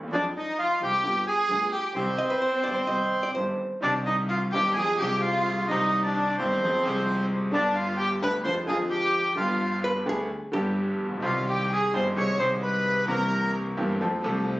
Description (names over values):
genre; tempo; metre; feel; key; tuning
tango; 130 BPM; 4/4; rubato; C harmonic minor; A4 = 439 Hz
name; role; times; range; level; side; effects
bright concert grand piano; accompaniment; 0.0-14.6 s; G1 to A4; -30 LUFS; equal; none
warm double bass; bass; 0.0-14.6 s; G1 to F2; -32 LUFS; equal; none
bandoneon; melody; 0.1-13.5 s; C4 to Db6; -26 LUFS; right 1 dB; none
warm violin; second line; 0.1-13.5 s; C4 to Db5; -29 LUFS; left 1 dB; none
hollow-body jazz guitar; second line; 2.2-3.8, 9.8-11.1 s; G4 to Eb5; -30 LUFS; right 1 dB; none
room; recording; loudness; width
light reverb; recorded on a phone in the room, studio reverb, nothing above 7.8 kHz; -23 LUFS; side -18 dB against mid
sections
0.0-3.8 A section; 3.8-14.6 B section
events
none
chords
0.1 Fm; 1.0 G7; 2.0 Cm; 4.8 Fm; 5.7 Cm; 6.6 Fm; 7.5 G; 8.5 Ddim/F; 9.4 G; 11.2 Cm; 12.2 Ab/C; 13.1 C7; 14.0 F